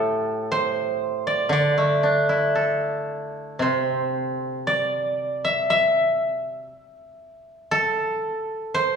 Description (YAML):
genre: chinese traditional, Chinese solo plucked strings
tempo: 58 BPM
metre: 2/4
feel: rubato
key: D shang mode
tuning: A4 = 441 Hz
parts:
  - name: steel-string zither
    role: solo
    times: 0.0-9.0 s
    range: A2 to E5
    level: -21 LUFS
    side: right 1 dB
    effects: none
room: wet recital hall reverb, RT60 1.5 s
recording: recorded in a church or concert hall, small room ambience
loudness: -20 LUFS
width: side -6 dB against mid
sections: 0.0-9.0 A section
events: none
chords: none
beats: 0.49 | 1.50 2.56 | 3.62 4.66 | 5.69 6.71 | 7.71 8.73